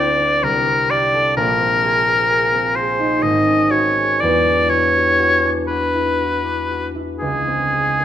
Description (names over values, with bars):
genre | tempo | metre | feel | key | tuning
classical, impressionist duo for oboe and harp | 57-65 BPM | 3/4 | rubato | unclear | A4 = 439 Hz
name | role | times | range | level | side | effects
clear oboe | melody | 0.0-8.0 s | G#4 to Eb5 | -16 LUFS | left 1 dB | none
concert harp | accompaniment | 0.0-8.0 s | Ab1 to Bb4 | -20 LUFS | equal | none
room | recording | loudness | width
moderate large studio reverb, RT60 1.4 s | none | -14 LUFS | side -10 dB against mid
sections
0.0-8.0 A section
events
none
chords
0.4 Csus2; 1.4 Bb9sus4; 3.2 Ab7sus4; 4.2 Em9; 7.2 C#maj7(no3)